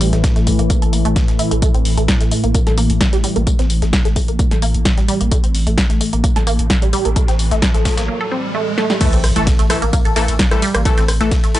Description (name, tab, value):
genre	driving peak-time techno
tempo	130 BPM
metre	4/4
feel	straight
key	unclear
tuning	A4 = 440 Hz
part	resonant blip pluck	riff	0.0-11.6 s	G3 to A4	-22 LUFS	right 2 dB	phaser, sidechain pumping, tape echo
part	saturated sub bass	bass	0.0-11.5 s	A1	-19 LUFS	equal	overdrive, sidechain pumping, low-pass filter
part	deep dark ambient pad	drone	0.0-11.6 s	A2 to E3	-24 LUFS	left 2 dB	chorus, built-in reverb, sidechain pumping
part	dusty soul sampler-style drum kit	drums	0.0-11.6 s	hi-hat, snare drum, tambourine	-29 LUFS	left 1 dB	high-pass filter on perc, high-pass filter on hats, high-pass filter on snare
part	punchy analog drum machine	drums	0.0-11.6 s	crash cymbal, hi-hat, ride cymbal, rim click, snare drum	-22 LUFS	left 1 dB	none
part	electronic kick drum	drums	0.2-11.4 s	none	-16 LUFS	equal	none
part	riser and impact	sound effects	6.5-10.9 s	none	-25 LUFS	equal	none
part	supersaw stab	stabs	9.0-11.6 s	E3 to A4	-21 LUFS	left 4 dB	sidechain pumping, analog delay
room	little or no reverb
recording	dry, gritty hardware recording, nothing above 10.8 kHz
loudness	-13 LUFS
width	side -14 dB against mid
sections	0.0-9.0 A section; 9.0-11.6 B section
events	filter sweep on synth arpeggio sound 0.0-9.0; riser 6.5-9.0; break 8.1-9.0; drum fill 8.8; drop 9.0-11.6; impact 9.0-10.9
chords	0.0 A5